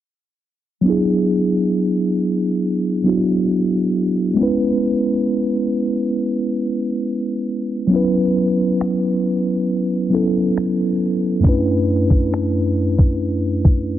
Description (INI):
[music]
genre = contemporary R&B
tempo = 68 BPM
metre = 4/4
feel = straight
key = unclear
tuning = A4 = 440 Hz
[part]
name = mellow tine electric piano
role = accompaniment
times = 0.8-14.0 s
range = F#2 to B4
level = -16 LUFS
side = equal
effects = medium stereo tremolo
[part]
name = smooth R&B drum kit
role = drums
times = 8.8-13.9 s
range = finger snaps, kick drum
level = -14 LUFS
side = equal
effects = none
[sound]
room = light reverb, digital ambience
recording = heavily compressed radio sound, multiband compression, low-pass filter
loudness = -16 LUFS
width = side -12 dB against mid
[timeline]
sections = 0.9-14.0 A section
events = filter sweep 0.9-14.0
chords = 0.9 E9; 4.4 C#m7; 7.9 F#7sus4; 11.4 Bm11/F#